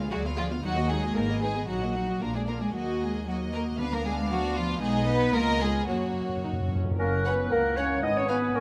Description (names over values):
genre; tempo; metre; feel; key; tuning
quick classical-period movement for symphony orchestra; 115 BPM; 2/4; rubato; Eb minor, F# major from 4.8 s; A4 = 440 Hz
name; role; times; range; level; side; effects
dark studio violin section; melody; 0.0-8.4 s; Cb5 to Gb5; -41 LUFS; equal; none
warm studio viola section; accompaniment; 0.0-8.6 s; Gb3 to D#5; -35 LUFS; equal; none
rich studio double bass section; bass; 0.0-8.6 s; F#1 to F#2; -35 LUFS; equal; none
warm studio cello section; bass; 0.0-8.6 s; C#2 to B3; -34 LUFS; equal; none
rich studio violin section; second line; 0.1-8.4 s; C#4 to C#5; -34 LUFS; equal; none
timpani; percussion; 5.9-7.0 s; F#2; -35 LUFS; equal; none
clear clarinet; second line; 7.0-8.6 s; A#4 to D#5; -31 LUFS; equal; none
mellow concert flute; second line; 7.0-8.6 s; C#6 to F#6; -36 LUFS; equal; none
mellow cor anglais; second line; 7.0-8.6 s; F#5 to G#5; -41 LUFS; equal; none
mellow bassoon; accompaniment; 7.0-8.6 s; A#3 to C#4; -35 LUFS; equal; none
mellow French horn section; sustained chords; 7.0-8.6 s; A#3 to D#4; -33 LUFS; equal; none
room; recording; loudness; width
light reverb; none; -27 LUFS; mono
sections
0.0-7.0 A section; 7.0-8.6 B section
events
timpani fill 5.9-7.0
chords
0.0 Ddim7; 0.6 Ebm; 1.2 Abm; 1.7 Ebm/Bb; 2.2 Bb; 2.7 Ebm; 3.8 Ddim7; 4.8 G#m/B; 5.3 C#9; 5.9 F#; 8.0 C#7(no3)/G#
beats
0.12 | 0.64 1.16 | 1.68 2.22 | 2.75 3.27 | 3.79 4.31 | 4.82 5.35 | 5.89 6.45 | 6.99 7.52 | 8.04 8.56